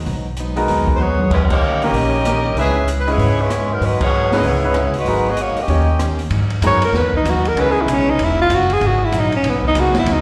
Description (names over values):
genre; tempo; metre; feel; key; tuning
jazz, big band swing; 192 BPM; 4/4; swing 63% on 8ths; G# minor; A4 = 440 Hz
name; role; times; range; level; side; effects
upright bass; bass; 0.0-10.2 s; E1 to G#2; -22 LUFS; equal; none
picked plugged-in steel-string acoustic guitar; accompaniment; 0.1-10.2 s; G#2 to G4; -30 LUFS; equal; slapback echo
open jazz drum kit; drums; 0.1-10.2 s; crash cymbal, hi-hat, kick drum, ride cymbal, rim click, snare drum, toms; -26 LUFS; equal; none
clear baby grand piano; accompaniment; 0.6-9.9 s; G#3 to D#5; -23 LUFS; equal; slapback echo
bright saxophone section; melody; 0.9-6.0 s; F#3 to E5; -21 LUFS; equal; slapback echo
breathy alto saxophone; melody; 6.7-10.2 s; B3 to C#5; -18 LUFS; equal; slapback echo
room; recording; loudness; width
light reverb; live gig heard through the venue's PA, recital hall reverb; -17 LUFS; mono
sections
0.0-6.3 A section; 6.3-10.2 B section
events
drum fill 1.0-1.3; band accent 1.5, 4.0; alto saxophone solo 6.3-10.2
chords
0.0 G#m7; 1.3 D#7; 2.6 C#m7; 3.8 G#m7; 4.4 C#m7; 5.1 G#m7; 5.7 D#7; 6.3 G#m7; 7.6 C#m7; 8.8 G#m7